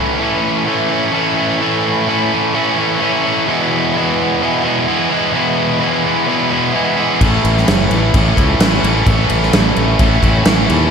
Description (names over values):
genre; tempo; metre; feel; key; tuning
classic rock; 129 BPM; 4/4; straight; unclear; A4 = 440 Hz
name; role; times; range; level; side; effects
cranked stack guitar; riff; 0.0-10.9 s; E2 to E4; -14 LUFS; equal; overdrive
modern bright fingered electric bass; bass; 7.2-10.9 s; F#1 to D#2; -16 LUFS; equal; none
big rock drum kit; drums; 7.2-10.8 s; crash cymbal, kick drum, snare drum; -15 LUFS; equal; none
room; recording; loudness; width
moderate lush hall reverb, RT60 1.8 s, studio reverb; big arena sound; -12 LUFS; side -6 dB against mid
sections
0.0-10.9 A section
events
none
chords
0.0 A; 3.5 E; 7.2 A